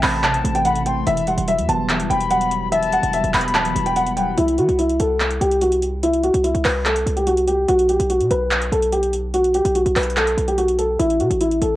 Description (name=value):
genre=hip hop, trap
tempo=145 BPM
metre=4/4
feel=half-time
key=unclear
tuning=A4 = 440 Hz
part: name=dark grand piano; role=melody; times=0.0-11.8 s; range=E4 to B5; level=-18 LUFS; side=equal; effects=low-pass filter, cassette tape
part: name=silver concert flute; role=second line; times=0.0-4.4 s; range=F#5 to C6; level=-26 LUFS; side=left 7 dB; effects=cassette tape, tape echo
part: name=soft electric-piano-like synth keys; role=accompaniment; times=0.0-4.4 s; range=C3 to C4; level=-25 LUFS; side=right 1 dB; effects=chorus, phaser, low-pass filter, cassette tape
part: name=hard-hitting 808-style bass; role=bass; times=0.0-11.8 s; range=E1 to E3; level=-24 LUFS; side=right 1 dB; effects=none
part: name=trap drum kit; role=drums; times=0.0-11.7 s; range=handclaps, hi-hat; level=-24 LUFS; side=right 1 dB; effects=overdrive
room=light reverb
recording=home recording on cassette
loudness=-16 LUFS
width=side -15 dB against mid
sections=0.0-4.4 A section; 4.4-11.8 B section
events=none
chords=0.0 Am; 1.1 Emadd9; 4.4 C; 7.7 Gmaj9/B (rootless); 11.0 Am